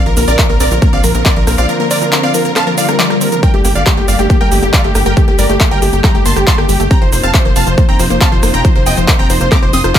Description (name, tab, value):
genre	uplifting trance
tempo	138 BPM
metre	4/4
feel	straight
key	G minor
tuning	A4 = 440 Hz
part	supersaw stab	melody	0.0-10.0 s	G4 to F6	-17 LUFS	right 2 dB	sidechain pumping, ping-pong delay
part	clear grand piano	second line	0.0-10.0 s	G4 to F6	-22 LUFS	equal	sidechain pumping, tape echo
part	dark studio string section	sustained chords	0.0-10.0 s	C3 to G4	-21 LUFS	equal	sidechain pumping
part	wide unison pluck	arpeggios	0.0-10.0 s	F3 to F4	-20 LUFS	left 4 dB	cassette tape, sidechain pumping, tape echo
part	tight sequencer bass	bass	0.1-9.9 s	F1 to Bb1	-16 LUFS	equal	sidechain pumping
part	big-room dance drum kit	drums	0.1-10.0 s	handclaps, hi-hat, rim click, shaker	-16 LUFS	equal	none
part	electronic kick drum	drums	0.4-10.0 s	none	-11 LUFS	equal	none
part	swell	sound effects	2.7-3.4 s	none	-17 LUFS	left 7 dB	none
room	light reverb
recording	none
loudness	-9 LUFS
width	side -10 dB against mid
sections	0.0-10.0 A section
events	swell 2.7-3.4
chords	0.0 Bbadd9; 3.4 Gmadd9; 6.9 F7sus4